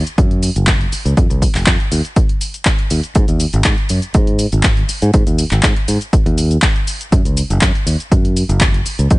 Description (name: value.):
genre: filtered disco house.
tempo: 121 BPM.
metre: 4/4.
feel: straight.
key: unclear.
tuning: A4 = 441 Hz.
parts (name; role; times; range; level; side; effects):
punchy analog drum machine; drums; 0.1-9.2 s; cabasa, handclaps, hi-hat; -20 LUFS; equal; sidechain pumping on hats, sidechain pumping on perc.
fingered electric bass; bass; 0.2-9.2 s; F1 to Ab2; -15 LUFS; equal; sidechain pumping.
electronic kick drum; drums; 0.2-9.2 s; none; -14 LUFS; equal; none.
room: digital ambience.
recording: nothing above 10.4 kHz.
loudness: -12 LUFS.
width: side -21 dB against mid.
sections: 0.0-9.2 A section.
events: none.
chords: none.